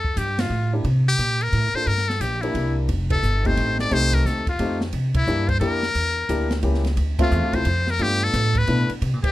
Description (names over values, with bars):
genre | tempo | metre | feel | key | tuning
jazz, small-group swing and bop | 176 BPM | 3/4 | swing 64% on 8ths | C mixolydian | A4 = 440 Hz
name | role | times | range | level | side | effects
trumpet with metal mute | melody | 0.0-9.3 s | E4 to D5 | -24 LUFS | left 3 dB | none
upright bass | bass | 0.0-9.3 s | F1 to C3 | -22 LUFS | equal | none
open jazz drum kit | drums | 0.0-9.3 s | hi-hat, kick drum, ride cymbal, snare drum | -28 LUFS | equal | none
warm concert grand piano | accompaniment | 0.7-8.9 s | A3 to E5 | -26 LUFS | left 1 dB | none
room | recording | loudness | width
little or no reverb | close, detailed microphones | -19 LUFS | side -16 dB against mid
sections
0.0-9.3 A section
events
band accent 0.3, 3.1, 5.1, 7.1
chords
0.0 F; 0.8 C5; 1.9 Gm; 2.5 C7; 2.9 F7; 4.9 C7; 6.0 Em7b5; 6.6 C#dim7; 7.0 Dm7; 8.0 G7